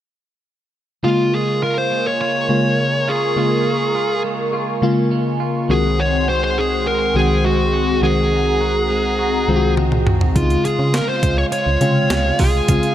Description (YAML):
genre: 1980s-style pop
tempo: 103 BPM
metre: 4/4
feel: straight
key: Bb minor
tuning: A4 = 439 Hz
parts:
  - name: fuzz lead guitar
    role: melody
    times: 1.0-12.9 s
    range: F4 to Db5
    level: -19 LUFS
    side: equal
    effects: distortion
  - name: FM electric piano with soft pad layer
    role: accompaniment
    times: 1.0-12.9 s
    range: C2 to Gb4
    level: -19 LUFS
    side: left 1 dB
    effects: chorus
  - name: phased analog pad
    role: sustained chords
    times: 1.3-12.9 s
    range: C4 to Db6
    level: -25 LUFS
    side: equal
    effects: phaser, chorus
  - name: clean electric guitar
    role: riff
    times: 1.0-12.9 s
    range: Eb3 to Gb4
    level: -26 LUFS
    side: right 5 dB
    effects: wide subtle chorus
  - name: clean 12-bit digital drum machine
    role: drums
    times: 9.8-12.9 s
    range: hi-hat, kick drum, snare drum, toms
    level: -19 LUFS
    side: equal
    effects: gated reverb
  - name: solid FM bass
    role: bass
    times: 10.4-12.8 s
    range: C2 to Db3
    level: -19 LUFS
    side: equal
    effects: none
room: light reverb, digital ambience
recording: none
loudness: -15 LUFS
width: side -11 dB against mid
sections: 1.0-12.9 A section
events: drum fill 9.8-10.4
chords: 1.0 Bbm7; 5.7 Ab7/C; 10.4 Dbmaj7